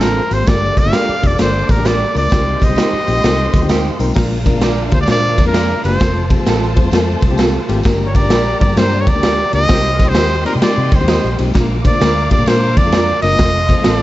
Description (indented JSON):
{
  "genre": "uptempo 1960s-style soul",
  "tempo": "130 BPM",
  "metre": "4/4",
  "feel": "swing 65% on 8ths",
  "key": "Bb major",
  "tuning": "A4 = 439 Hz",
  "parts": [
    { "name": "clear trumpet", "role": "melody", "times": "0.0-14.0 s", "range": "Bb4 to F5", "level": "-18 LUFS", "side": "equal", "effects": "none" },
    { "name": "bright saxophone section", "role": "second line", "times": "0.0-4.0, 9.7-10.1 s", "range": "D3 to C5", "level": "-29 LUFS", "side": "right 1 dB", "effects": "none" },
    { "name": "warm studio violin section", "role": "second line", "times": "0.0-14.0 s", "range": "D4 to D6", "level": "-27 LUFS", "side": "left 1 dB", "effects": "none" },
    { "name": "barky reed electric piano", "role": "accompaniment", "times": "0.0-14.0 s", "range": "A3 to G5", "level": "-23 LUFS", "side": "left 4 dB", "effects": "overdrive" },
    { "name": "electric guitar through a small old amp", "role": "stabs", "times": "0.0-14.0 s", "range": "C4 to Eb5", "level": "-23 LUFS", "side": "right 6 dB", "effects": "none" },
    { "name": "vintage muted fingered electric bass", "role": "bass", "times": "0.0-14.0 s", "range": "F1 to C3", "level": "-18 LUFS", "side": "equal", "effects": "none" },
    { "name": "raw garage drum kit", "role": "drums", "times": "0.0-14.0 s", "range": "crash cymbal, hi-hat, kick drum, ride cymbal, snare drum", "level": "-15 LUFS", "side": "equal", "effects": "none" },
    { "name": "tambourine", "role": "percussion", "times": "0.0-14.0 s", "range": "none", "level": "-37 LUFS", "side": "right 5 dB", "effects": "none" }
  ],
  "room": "small room ambience",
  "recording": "dark, warm production, nothing above 7.8 kHz",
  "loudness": "-11 LUFS",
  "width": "side -16 dB against mid",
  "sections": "0.0-4.2 A section; 4.2-14.0 B section",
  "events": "reed electric piano fill 3.5-4.2; band accent 9.7-11.5",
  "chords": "0.5 Gm; 2.3 Cm; 4.2 Bb; 6.0 F; 7.9 Gm; 9.7 Cm; 11.5 Bb; 13.4 F"
}